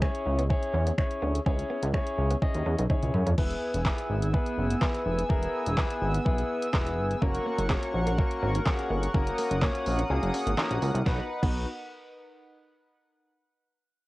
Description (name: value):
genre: dance-pop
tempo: 125 BPM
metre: 4/4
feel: straight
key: B major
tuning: A4 = 437 Hz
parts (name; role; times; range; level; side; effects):
- warm concert grand piano; accompaniment; 0.0-11.7 s; A#3 to D#5; -31 LUFS; left 2 dB; sidechain pumping, cassette tape
- direct-recorded clean electric guitar; riff; 0.0-3.3, 7.2-11.6 s; G#3 to D#4; -36 LUFS; right 3 dB; lush chorus, cassette tape
- chorused synth bass; bass; 0.0-11.7 s; E1 to F#2; -28 LUFS; equal; transformer saturation, sidechain pumping
- pop drum kit; drums; 0.0-11.5 s; crash cymbal, finger snaps, handclaps, hi-hat, kick drum, snare drum, toms; -28 LUFS; equal; overdrive
- chorused pulse-width pad; sustained chords; 3.4-11.3 s; B3 to E6; -34 LUFS; equal; sidechain pumping, cassette tape
room: light reverb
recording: home recording on cassette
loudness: -25 LUFS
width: side -19 dB against mid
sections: 0.0-3.4 A section; 3.4-11.1 B section; 11.1-13.0 C section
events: drum fill 2.9-3.4; kick muted 10.1-11.1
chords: 0.0 C#m; 3.4 E; 7.2 F#; 11.1 B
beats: 0.02 0.50 0.98 | 1.46 1.94 2.42 2.90 | 3.38 3.86 4.34 4.82 | 5.30 5.78 6.26 6.74 | 7.22 7.70 8.18 8.66 | 9.14 9.62 10.10 10.58 | 11.06 11.54